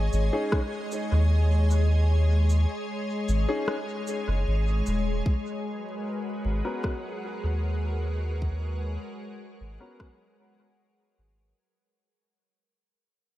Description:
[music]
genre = ambient dub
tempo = 76 BPM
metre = 4/4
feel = straight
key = G# minor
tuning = A4 = 442 Hz
[part]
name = soft additive organ-like pad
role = sustained chords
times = 0.0-11.6 s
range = G#3 to G#5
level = -32 LUFS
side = left 1 dB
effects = ensemble chorus, built-in reverb
[part]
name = soft dub sub bass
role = bass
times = 0.0-11.5 s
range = D#1 to D#2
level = -23 LUFS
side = equal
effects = none
[part]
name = electronic cabasa and rim click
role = drums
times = 0.1-10.2 s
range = none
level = -37 LUFS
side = equal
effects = studio reverb, dub echo
[part]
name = warm upright piano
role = stabs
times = 0.3-10.1 s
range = B3 to A#4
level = -34 LUFS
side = left 1 dB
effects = low-pass filter, dub echo
[part]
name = electronic kick drum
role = drums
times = 0.5-10.2 s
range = none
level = -27 LUFS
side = equal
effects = studio reverb
[part]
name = bubbling stepped-filter texture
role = texture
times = 5.3-11.6 s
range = F#3 to F#4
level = -45 LUFS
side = left 1 dB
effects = chorus, built-in reverb
[sound]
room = light reverb, digital ambience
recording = vinyl crackle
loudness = -24 LUFS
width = side -15 dB against mid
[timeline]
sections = 0.0-5.3 A section; 5.3-11.6 B section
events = break 2.1-5.3; fade-out 5.3-11.6; filter sweep on upright piano 5.3-11.6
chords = 0.0 C#sus2/G#; 5.3 G#m11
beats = 0.53 1.31 | 2.10 2.89 3.68 4.47 | 5.26 6.05 6.84 7.63 | 8.42 9.21 10.00 10.79

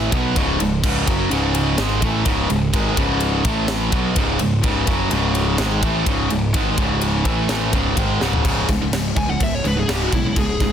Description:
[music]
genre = heavy metal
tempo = 126 BPM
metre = 4/4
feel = straight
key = C# minor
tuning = A4 = 441 Hz
[part]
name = high-gain distorted guitar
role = riff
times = 0.0-10.7 s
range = C#2 to B3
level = -22 LUFS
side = right 9 dB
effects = distortion
[part]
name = tight distorted guitar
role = riff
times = 0.0-10.7 s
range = C#2 to B3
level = -23 LUFS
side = left 11 dB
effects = distortion
[part]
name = fuzz picked electric bass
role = bass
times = 0.0-10.7 s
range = C#1 to B1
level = -23 LUFS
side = equal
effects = overdrive
[part]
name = tight metal drum kit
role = drums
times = 0.1-10.7 s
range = crash cymbal, kick drum, ride cymbal, snare drum, toms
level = -23 LUFS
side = equal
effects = none
[part]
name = high-gain lead guitar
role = melody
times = 9.2-10.7 s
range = E4 to G#5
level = -24 LUFS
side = left 1 dB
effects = distortion
[sound]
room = little or no reverb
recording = dense, heavily limited modern master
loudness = -17 LUFS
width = side -9 dB against mid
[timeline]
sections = 0.0-8.4 A section; 8.4-10.7 B section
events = half time 0.0-8.4; drum fill 8.2; lead electric guitar solo 8.4-10.7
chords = 0.1 C#m; 3.4 A5; 3.9 C#m; 8.4 C#5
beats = 0.36 | 0.83 1.31 1.78 2.26 | 2.73 3.21 3.68 4.16 | 4.63 5.11 5.58 6.06 | 6.54 7.01 7.49 7.97 | 8.45 8.93 9.40 9.88 | 10.36

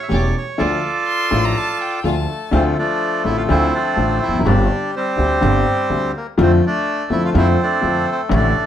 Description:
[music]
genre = tango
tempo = 124 BPM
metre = 4/4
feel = rubato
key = D minor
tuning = A4 = 439 Hz
[part]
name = bandoneon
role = melody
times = 0.0-8.7 s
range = F3 to E5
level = -19 LUFS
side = right 1 dB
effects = slapback echo
[part]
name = warm upright piano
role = accompaniment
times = 0.1-8.5 s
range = E1 to A4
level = -19 LUFS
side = left 3 dB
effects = none
[part]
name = warm chamber string section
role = stabs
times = 0.1-2.2 s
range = A3 to G4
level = -28 LUFS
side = equal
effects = none
[part]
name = upright bass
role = bass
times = 0.1-8.5 s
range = E1 to F2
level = -19 LUFS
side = right 2 dB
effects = none
[part]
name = warm violin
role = second line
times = 1.1-2.5 s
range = G5 to C6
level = -25 LUFS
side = left 5 dB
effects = none
[sound]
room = light reverb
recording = close, detailed microphones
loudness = -15 LUFS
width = side -10 dB against mid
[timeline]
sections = 0.0-2.5 A section; 2.5-8.7 A section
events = none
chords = 0.0 A7; 0.6 Dm; 2.5 Dm7; 4.5 Gsus4; 6.4 Dm7/F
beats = 0.11 | 0.59 1.07 1.56 2.04 | 2.53 3.01 3.50 3.98 | 4.46 4.95 5.43 5.91 | 6.39 6.87 7.35 7.83 | 8.31

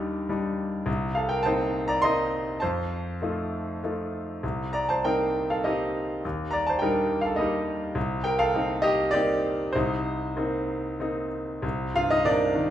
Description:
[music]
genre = classical, lyrical solo piano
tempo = 91-108 BPM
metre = 3/4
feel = rubato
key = C dorian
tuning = A4 = 440 Hz
[part]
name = bright concert grand piano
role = solo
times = 0.0-12.7 s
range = C2 to C6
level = -24 LUFS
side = equal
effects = none
[sound]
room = moderate recital hall reverb, RT60 1.4 s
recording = minimal, uncompressed stereo recording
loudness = -24 LUFS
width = side -11 dB against mid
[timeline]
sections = 0.0-11.6 A section; 11.6-12.7 A section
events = none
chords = 0.0 Ebmaj7; 0.9 Cm7; 2.6 F7; 4.4 Cm7; 6.2 Ebmaj7; 8.0 Cm7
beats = 0.29 | 0.88 1.45 2.03 | 2.62 3.21 3.82 | 4.43 5.04 5.65 | 6.24 6.82 7.38 | 7.96 8.55 9.14 | 9.75 10.37 11.00 | 11.63 12.24

